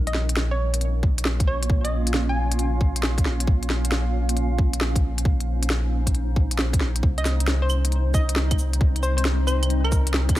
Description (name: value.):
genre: future garage.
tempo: 135 BPM.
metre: 4/4.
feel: swing 67% on 16ths.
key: Bb dorian.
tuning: A4 = 444 Hz.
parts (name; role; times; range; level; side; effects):
granular cloud pad; sustained chords; 0.0-10.4 s; G3 to F5; -30 LUFS; right 1 dB; built-in reverb, sidechain pumping.
soft dub sub bass; bass; 0.0-10.4 s; Bb1 to C2; -23 LUFS; equal; sidechain pumping.
hollow square pluck; melody; 0.1-2.9, 7.2-10.1 s; Bb4 to Ab5; -30 LUFS; equal; chorus, vintage 12-bit sampler grit, tape echo.
organic electronic drum kit; drums; 0.1-10.4 s; cabasa, claves, hi-hat, snare drum; -26 LUFS; equal; none.
electronic kick drum; drums; 1.0-10.3 s; none; -20 LUFS; equal; none.
room: little or no reverb.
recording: echo-heavy mix.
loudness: -20 LUFS.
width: side -15 dB against mid.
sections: 0.0-10.4 A section.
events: none.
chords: 0.0 Bbm; 7.0 Cm.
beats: 0.36 0.81 1.25 | 1.70 2.14 2.59 3.03 | 3.48 3.92 4.37 4.81 | 5.25 5.70 6.14 6.59 | 7.03 7.48 7.92 8.37 | 8.81 9.25 9.70 10.14.